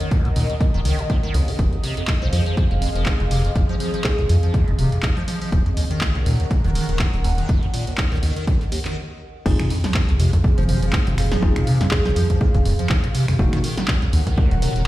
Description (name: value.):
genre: acid house.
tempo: 122 BPM.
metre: 4/4.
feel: swing 56% on 16ths.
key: F phrygian.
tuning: A4 = 440 Hz.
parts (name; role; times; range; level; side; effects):
liquid acid bass; riff; 0.0-14.8 s; Eb1 to F3; -24 LUFS; equal; phaser, overdrive, ensemble chorus, sidechain pumping, ping-pong delay.
punchy analog drum machine; drums; 0.0-14.8 s; crash cymbal, finger snaps, handclaps, hi-hat, snare drum, toms; -27 LUFS; equal; none.
airy breathy pad; texture; 0.0-14.9 s; C4 to Gb5; -31 LUFS; equal; chorus, phaser, sidechain pumping.
electronic kick drum; drums; 0.1-14.5 s; none; -21 LUFS; equal; none.
round analog bass; bass; 0.2-14.9 s; Eb1 to F2; -21 LUFS; equal; sidechain pumping.
kalimba; melody; 4.0-4.7, 11.9-12.6 s; Ab4; -30 LUFS; right 1 dB; dub echo.
bell-like tine electric piano; stabs; 9.5-13.6 s; Bb3 to Ab4; -29 LUFS; left 2 dB; ping-pong delay.
sub drop; sound effects; 9.5-11.4 s; none; -27 LUFS; equal; none.
room: light reverb, digital ambience.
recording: played on a big sound system in a bare room, large studio reverb.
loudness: -17 LUFS.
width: side -16 dB against mid.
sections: 0.0-9.5 A section; 9.5-14.9 B section.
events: stop 9.0-9.5; drop 9.5-14.9; impact 9.5-11.4.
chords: 0.0 Ebm7; 1.6 Fm7; 5.5 Ebm7; 9.5 Fm7; 13.4 Ebm7.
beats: 0.11 0.60 1.10 | 1.59 2.08 2.57 3.06 | 3.56 4.05 4.54 5.03 | 5.52 6.01 6.51 7.00 | 7.49 7.98 8.47 8.97 | 9.46 9.95 10.44 10.93 | 11.43 11.92 12.41 12.90 | 13.39 13.88 14.38 14.87.